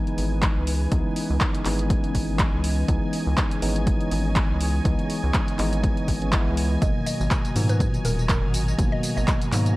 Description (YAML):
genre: deep house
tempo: 122 BPM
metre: 4/4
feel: swing 56% on 16ths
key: C# minor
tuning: A4 = 440 Hz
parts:
  - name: soft string machine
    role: sustained chords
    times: 0.0-9.8 s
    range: E3 to A#5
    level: -38 LUFS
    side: equal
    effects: ensemble chorus, vintage 12-bit sampler grit, sidechain pumping
  - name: tine electric piano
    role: stabs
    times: 0.0-9.8 s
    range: A#2 to E4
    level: -27 LUFS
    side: equal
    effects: medium stereo tremolo, low-pass filter, tape echo
  - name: analog string pad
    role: texture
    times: 0.0-9.8 s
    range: G#5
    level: -38 LUFS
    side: right 3 dB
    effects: ensemble chorus
  - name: deep dark ambient pad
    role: texture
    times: 1.3-9.8 s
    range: C#4 to A#5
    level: -40 LUFS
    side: left 2 dB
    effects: none
  - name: deep house drum kit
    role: drums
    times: 0.1-9.8 s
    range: handclaps, hi-hat, tambourine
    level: -30 LUFS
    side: equal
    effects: overdrive
  - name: rubbery square bass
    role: bass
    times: 0.2-9.8 s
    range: D#1 to G#2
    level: -24 LUFS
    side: equal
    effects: sidechain pumping
  - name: electronic kick drum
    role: drums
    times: 0.4-9.4 s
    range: none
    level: -24 LUFS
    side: equal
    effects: overdrive
  - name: mallet-like synth pluck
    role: melody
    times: 6.8-9.5 s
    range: A#4 to D#5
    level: -34 LUFS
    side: right 1 dB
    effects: chorus, phaser, tape echo
room: little or no reverb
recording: dry, gritty hardware recording, vinyl crackle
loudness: -20 LUFS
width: side -19 dB against mid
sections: 0.0-9.8 A section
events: filter sweep on tine electric piano 0.0-9.8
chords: 0.0 C#m7; 6.8 G#m7